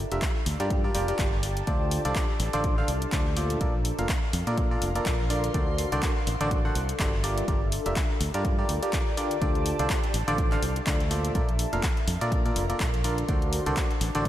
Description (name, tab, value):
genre	piano house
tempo	124 BPM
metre	4/4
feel	swing 56% on 16ths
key	D minor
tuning	A4 = 441 Hz
part	modern bright fingered electric bass	bass	0.0-14.3 s	F1 to Bb2	-30 LUFS	equal	sidechain pumping
part	ethereal airy pad	texture	0.0-14.3 s	D4 to C6	-35 LUFS	equal	ensemble chorus, built-in reverb, phaser, sidechain pumping
part	barking FM electric piano	riff	0.1-14.3 s	Bb2 to F#5	-29 LUFS	equal	chorus, sidechain pumping, diffuse ambient delay
part	punchy analog drum machine	drums	0.1-14.3 s	handclaps, hi-hat	-34 LUFS	left 1 dB	none
part	electronic kick drum	drums	0.2-14.3 s	none	-28 LUFS	equal	none
room	moderate lush hall reverb, RT60 2.1 s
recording	dreamy mix soaked in reverb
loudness	-24 LUFS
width	side -12 dB against mid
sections	0.0-9.4 A section; 9.4-14.3 B section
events	drop 9.4-14.3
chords	0.0 Gm7; 1.7 Dm7; 3.6 Bbmaj7; 5.5 D7; 7.2 Gm7; 9.4 Dm7; 11.3 Bbmaj7; 13.3 D7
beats	0.22 0.70 1.19 | 1.67 2.16 2.64 3.12 | 3.61 4.09 4.58 5.06 | 5.54 6.03 6.51 7.00 | 7.48 7.96 8.45 8.93 | 9.41 9.90 10.38 10.87 | 11.35 11.83 12.32 12.80 | 13.29 13.77 14.25